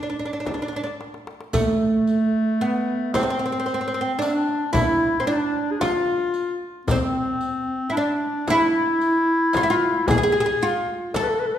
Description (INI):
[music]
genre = Turkish makam ensemble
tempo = 112 BPM (eighths)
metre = 10/8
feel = straight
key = D makam nikriz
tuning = A4 = 440 Hz
[part]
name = oud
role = melody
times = 0.0-11.6 s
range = A3 to A4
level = -22 LUFS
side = right 2 dB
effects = none
[part]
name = darbuka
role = percussion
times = 0.5-11.4 s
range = none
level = -31 LUFS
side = left 3 dB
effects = none
[part]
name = frame drum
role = percussion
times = 0.5-11.4 s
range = none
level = -28 LUFS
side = left 2 dB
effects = none
[part]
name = warm clarinet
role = second line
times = 1.5-11.6 s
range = A3 to B4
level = -24 LUFS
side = left 4 dB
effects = none
[part]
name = riq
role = percussion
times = 1.5-11.4 s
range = none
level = -34 LUFS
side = right 1 dB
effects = none
[sound]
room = wet recital hall reverb, RT60 1.6 s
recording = minimal, uncompressed stereo recording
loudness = -20 LUFS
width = side -10 dB against mid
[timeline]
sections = 0.0-1.5 A section; 1.5-11.6 B section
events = drum fill 0.5-1.5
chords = none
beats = 0.47 1.00 | 1.54 2.07 2.61 3.14 3.68 4.21 4.75 5.28 5.81 6.35 | 6.88 7.42 7.95 8.48 9.02 9.55 10.09 10.62 11.15